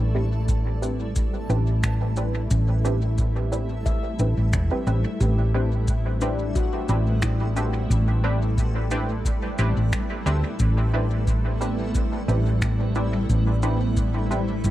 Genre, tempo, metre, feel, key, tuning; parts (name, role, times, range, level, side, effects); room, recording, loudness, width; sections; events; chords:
ambient dub; 89 BPM; 4/4; swing 54% on 16ths; A minor; A4 = 439 Hz
granular cloud pad; sustained chords; 0.0-14.7 s; G3 to E5; -32 LUFS; equal; built-in reverb
handpan; arpeggios; 0.0-9.2 s; D4 to E5; -35 LUFS; left 4 dB; dub echo
hollow-body short-scale fingered electric bass; bass; 0.0-14.7 s; E1 to D2; -22 LUFS; equal
backwards swelling texture; texture; 0.0-14.7 s; A3 to A4; -37 LUFS; right 2 dB; built-in reverb
filtered dub chord stab; stabs; 0.1-14.5 s; C4 to B4; -30 LUFS; right 1 dB; analog chorus, dub echo
electronic kick drum; drums; 0.5-14.1 s; -26 LUFS; equal
shaker and finger snaps; drums; 0.5-14.7 s; -35 LUFS; left 1 dB; dub echo
studio ambience; echo-heavy mix; -21 LUFS; side -14 dB against mid
0.0-14.7 A section
0.0 Am11